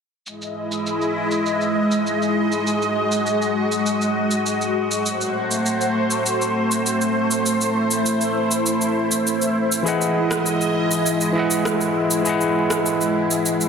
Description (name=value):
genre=sunset chillout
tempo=100 BPM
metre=4/4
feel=straight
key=E major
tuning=A4 = 445 Hz
part: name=lush unison pad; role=sustained chords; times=0.3-13.7 s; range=G#3 to D#5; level=-20 LUFS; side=equal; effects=chorus, phaser
part: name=electronic cabasa and rim click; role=drums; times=0.3-13.7 s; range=none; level=-26 LUFS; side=equal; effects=overdrive, low-pass filter on perc, low-pass filter on snare, low-pass filter on room
part: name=overdriven tine electric piano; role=accompaniment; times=9.8-13.7 s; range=E3 to F#5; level=-20 LUFS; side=moving between left 5 dB and right 2 dB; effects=auto-pan, tape echo
room=wet lush hall reverb, RT60 1.9 s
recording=dense, heavily limited modern master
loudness=-18 LUFS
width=side -6 dB against mid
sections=0.3-13.7 A section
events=none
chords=0.3 Emaj7; 5.1 Am6; 9.9 Emaj7